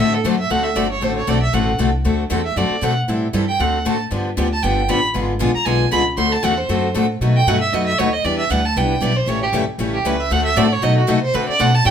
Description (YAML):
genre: acoustic string swing (jazz manouche)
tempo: 233 BPM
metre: 4/4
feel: swing 55% on 8ths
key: D mixolydian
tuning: A4 = 440 Hz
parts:
  - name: clear violin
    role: second line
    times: 0.0-11.9 s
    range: F#4 to C6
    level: -20 LUFS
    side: right 3 dB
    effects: none
  - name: picked steel-string acoustic guitar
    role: accompaniment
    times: 0.0-11.9 s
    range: B2 to A4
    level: -21 LUFS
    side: left 6 dB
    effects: none
  - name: picked steel-string acoustic guitar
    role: accompaniment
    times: 0.0-11.9 s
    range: B2 to B4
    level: -25 LUFS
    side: right 5 dB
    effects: none
  - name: upright bass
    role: bass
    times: 0.0-11.9 s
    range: G1 to D3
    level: -21 LUFS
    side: equal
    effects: none
room: light reverb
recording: minimal, uncompressed stereo recording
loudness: -16 LUFS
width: side -8 dB against mid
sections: 0.0-11.9 A section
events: violin solo 0.0-11.9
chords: 0.0 D7; 3.1 Am7; 3.6 D7; 4.1 G7; 5.1 G#dim7; 6.2 D7; 7.2 B7; 8.2 Em7; 9.3 A7; 10.3 D7; 10.8 B7; 11.3 D7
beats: 0.25 0.51 0.76 | 1.02 1.28 1.54 1.79 | 2.05 2.31 2.57 2.83 | 3.08 3.34 3.60 3.86 | 4.12 4.37 4.63 4.89 | 5.15 5.40 5.66 5.92 | 6.18 6.44 6.69 6.95 | 7.21 7.47 7.72 7.98 | 8.24 8.50 8.76 9.02 | 9.27 9.53 9.79 10.05 | 10.30 10.56 10.82 11.08 | 11.34 11.60 11.85